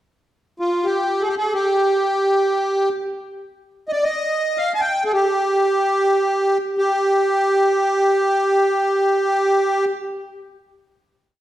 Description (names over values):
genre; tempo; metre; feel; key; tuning
Arabic maqam ensemble; free time; none; none; G maqam bayati; A4 = 440 Hz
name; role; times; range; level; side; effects
accordion; solo; 0.6-9.8 s; F4 to Ab5+50c; -17 LUFS; equal; light tremolo tuning
room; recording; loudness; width
wet recital hall reverb, RT60 1.5 s; heard from further back in the room; -17 LUFS; side -13 dB against mid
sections
0.2-6.8 free-time section; 6.8-10.1 final note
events
none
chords
none